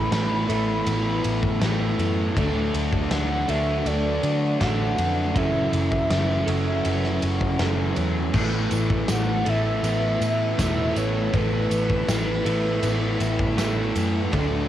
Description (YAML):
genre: rock, shoegaze and dream pop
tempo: 80 BPM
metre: 4/4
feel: straight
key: A major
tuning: A4 = 439 Hz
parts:
  - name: warbly nostalgic lead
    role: melody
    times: 0.0-14.0 s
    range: B4 to B5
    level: -28 LUFS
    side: equal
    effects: chorus, cassette tape, tape echo
  - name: direct-recorded clean electric guitar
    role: arpeggios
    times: 0.0-14.7 s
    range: E3 to F#4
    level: -34 LUFS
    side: left 7 dB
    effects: analog chorus, tape echo
  - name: electric guitar through a small old amp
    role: riff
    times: 0.0-14.7 s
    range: D3 to A4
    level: -28 LUFS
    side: right 8 dB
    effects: reverse reverb
  - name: fuzz guitar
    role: riff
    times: 0.0-14.7 s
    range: F#2 to D4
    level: -30 LUFS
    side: left 7 dB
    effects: distortion, wide subtle chorus
  - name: overdriven electric guitar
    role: riff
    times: 0.0-14.7 s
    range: F#2 to D4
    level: -31 LUFS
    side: equal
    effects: none
  - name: vintage muted picked electric bass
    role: bass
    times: 0.0-14.7 s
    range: E1 to D3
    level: -26 LUFS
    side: equal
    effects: none
  - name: big rock drum kit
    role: drums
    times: 0.1-14.5 s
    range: crash cymbal, kick drum, ride cymbal, snare drum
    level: -28 LUFS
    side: equal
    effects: cassette tape
  - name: string machine, full ensemble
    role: sustained chords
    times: 8.3-14.7 s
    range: A4 to E6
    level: -37 LUFS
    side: equal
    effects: none
  - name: tambourine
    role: percussion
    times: 8.7-14.1 s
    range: none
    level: -40 LUFS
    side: right 8 dB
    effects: none
room: little or no reverb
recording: home recording on cassette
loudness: -21 LUFS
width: side -12 dB against mid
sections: 0.0-14.7 A section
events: none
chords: 0.0 Asus2; 2.4 D; 5.3 F#m7; 8.3 Asus2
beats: 0.12 0.87 1.62 | 2.36 3.11 3.86 4.60 | 5.35 6.10 6.84 7.59 | 8.34 9.09 9.84 10.58 | 11.33 12.08 12.83 13.58 | 14.33